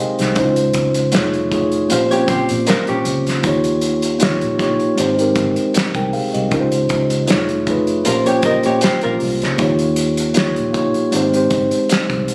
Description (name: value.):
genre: R&B, neo-soul.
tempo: 78 BPM.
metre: 4/4.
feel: swing 54% on 16ths.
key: Bb dorian.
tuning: A4 = 440 Hz.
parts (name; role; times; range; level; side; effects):
mellow tine electric piano; accompaniment; 0.0-12.3 s; Ab3 to C6; -19 LUFS; equal; none.
vintage muted fingered electric bass; bass; 0.2-12.3 s; F1 to Bb2; -27 LUFS; equal; none.
warm soul drum kit; drums; 0.2-12.3 s; hi-hat, kick drum, snare drum; -24 LUFS; equal; none.
archtop guitar, miked and amplified; second line; 1.9-3.4, 8.1-9.6 s; Db4 to F5; -22 LUFS; equal; plate reverb.
room: moderate studio reverb, RT60 0.6 s.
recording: recorded on a phone in the room, studio reverb.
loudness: -17 LUFS.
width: mono.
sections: 0.0-12.3 A section.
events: none.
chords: 0.4 Dbmaj9; 1.1 F7alt; 1.9 Bbm69; 3.4 Eb9; 5.0 Abmaj7; 6.5 Dbmaj9; 7.3 F7alt; 8.1 Bbm69; 9.6 Eb9; 11.1 Abmaj7.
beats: | 0.36 1.13 1.90 2.67 | 3.44 4.21 4.98 5.75 | 6.51 7.28 8.05 8.82 | 9.59 10.36 11.13 11.90.